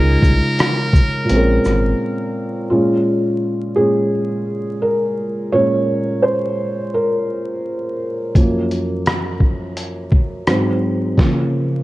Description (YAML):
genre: lo-fi hip hop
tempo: 85 BPM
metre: 4/4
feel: swing 62% on 16ths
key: Bb minor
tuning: A4 = 436 Hz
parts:
  - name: trumpet with metal mute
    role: melody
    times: 0.0-2.4 s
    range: Bb4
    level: -23 LUFS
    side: equal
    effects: low-pass filter, analog delay
  - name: felt-muted upright piano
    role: accompaniment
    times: 0.0-11.8 s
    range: Gb2 to Db5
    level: -17 LUFS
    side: equal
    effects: cassette tape, low-pass filter
  - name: soft dub sub bass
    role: bass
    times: 0.0-1.9 s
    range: Ab1 to Db2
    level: -17 LUFS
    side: equal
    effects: none
  - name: lo-fi sampler-style drum kit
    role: drums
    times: 0.2-1.8, 8.4-11.4 s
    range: hi-hat, kick drum, rim click, shaker, snare drum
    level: -16 LUFS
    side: equal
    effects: none
room: light reverb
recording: vinyl crackle, nothing above 10.8 kHz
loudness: -15 LUFS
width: side -18 dB against mid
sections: 0.0-2.7 A section; 2.7-11.8 B section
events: break 2.0-2.7; felt piano solo 2.7-11.8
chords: 0.0 Db69; 1.3 Bbm9; 8.4 Gbmaj7; 10.5 Ab7; 11.2 Db6